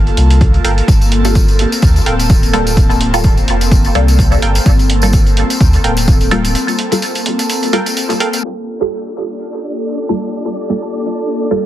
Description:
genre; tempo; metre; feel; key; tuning
dub techno; 127 BPM; 4/4; swing 56% on 16ths; G minor; A4 = 440 Hz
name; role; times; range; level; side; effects
airy breathy pad; sustained chords; 0.0-11.7 s; Bb3 to A4; -19 LUFS; left 1 dB; chorus, phaser, sidechain pumping
warm sub bass; bass; 0.0-6.5 s; D1 to D2; -14 LUFS; equal; sidechain pumping
electronic hi-hat; drums; 0.1-8.4 s; none; -23 LUFS; right 3 dB; overdrive
electronic kick drum; drums; 0.4-6.2 s; none; -11 LUFS; equal; none
wavetable chord stab; riff; 0.6-8.3 s; A4 to G5; -24 LUFS; right 2 dB; sidechain pumping, dub echo
tambourine; percussion; 0.9-8.4 s; none; -23 LUFS; left 2 dB; none
filtered dub chord stab; stabs; 1.2-11.7 s; G3 to A4; -19 LUFS; equal; phaser, sidechain pumping, dub echo
flickering grainy texture; texture; 8.7-11.7 s; D4 to D5; -25 LUFS; equal; built-in reverb, sidechain pumping
room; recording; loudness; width
little or no reverb; dense, heavily limited modern master, vinyl crackle, low-pass filter; -10 LUFS; side -13 dB against mid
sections
0.0-8.4 A section; 8.4-11.7 B section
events
break 6.5-8.4; filter sweep on analog synth pad 8.4-11.7; filter sweep 8.4-11.7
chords
0.0 Gm9

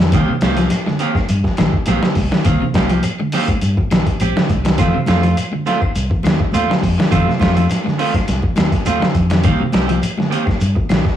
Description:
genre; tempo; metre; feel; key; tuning
afrobeat; 103 BPM; 4/4; swing 53% on 16ths; F mixolydian; A4 = 440 Hz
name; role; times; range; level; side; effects
electric guitar at the edge of break-up; arpeggios; 0.0-11.1 s; C3 to F3; -21 LUFS; left 1 dB; none
clean electric guitar; stabs; 0.0-11.1 s; Eb3 to G4; -21 LUFS; right 3 dB; none
fingered electric bass; bass; 0.0-11.1 s; Bb1 to G2; -19 LUFS; left 1 dB; none
lo-fi sampler-style drum kit; drums; 0.1-11.2 s; hi-hat, kick drum, snare drum; -17 LUFS; equal; overdrive
claves; percussion; 0.1-11.1 s; none; -35 LUFS; left 1 dB; none
congas; percussion; 0.1-11.1 s; none; -26 LUFS; equal; none
shekere; percussion; 0.1-11.1 s; none; -29 LUFS; left 1 dB; none
room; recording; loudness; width
moderate stone room reverb, RT60 0.9 s; rough rehearsal-room recording; -14 LUFS; side -10 dB against mid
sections
0.0-11.2 A section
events
none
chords
0.1 Cm7; 4.8 F7; 9.4 Cm7

